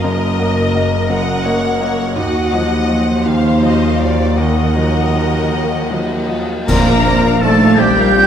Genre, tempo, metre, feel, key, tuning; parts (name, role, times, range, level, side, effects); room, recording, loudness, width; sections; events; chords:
cinematic, emotional film score for orchestra; 50-58 BPM (dotted quarters); 6/8; rubato; A4 = 440 Hz
warm studio violin section; melody; 0.0-8.3 s; D5 to Gb5; -23 LUFS; left 3 dB
rich studio violin section; second line; 0.0-8.3 s; Db5 to Bb5; -25 LUFS; left 3 dB
clear baby grand piano; accompaniment; 0.0-8.3 s; Gb1 to Eb5; -20 LUFS; left 1 dB
rich studio viola section; accompaniment; 0.0-8.3 s; F3 to C5; -22 LUFS; equal
rich studio cello section; bass; 0.0-8.3 s; Eb2 to Bb3; -19 LUFS; right 2 dB
rich studio double bass section; bass; 0.0-8.3 s; Gb1 to Eb2; -18 LUFS; right 1 dB
cymbal swell, clash cymbals and concert bass drum; percussion; 2.2-8.1 s; -24 LUFS; equal
clear oboe; second line; 6.7-8.3 s; G4 to Bb4; -22 LUFS; right 1 dB
large flute ensemble; second line; 6.7-8.3 s; Bb5 to A6; -16 LUFS; right 2 dB
mellow clarinet; second line; 6.7-8.3 s; G4 to Bb4; -21 LUFS; left 4 dB
mellow French horn section; sustained chords; 6.7-8.3 s; G3 to Bb3; -17 LUFS; left 2 dB
timpani; percussion; 6.7-7.8 s; Bb2; -24 LUFS; left 1 dB
wet scoring stage reverb, RT60 1.6 s; -12 LUFS; side -8 dB against mid
0.0-6.7 A section; 6.7-8.3 B section
band accent 6.7-7.4
0.0 Gb6; 2.2 Ebmadd9; 6.7 Bbadd9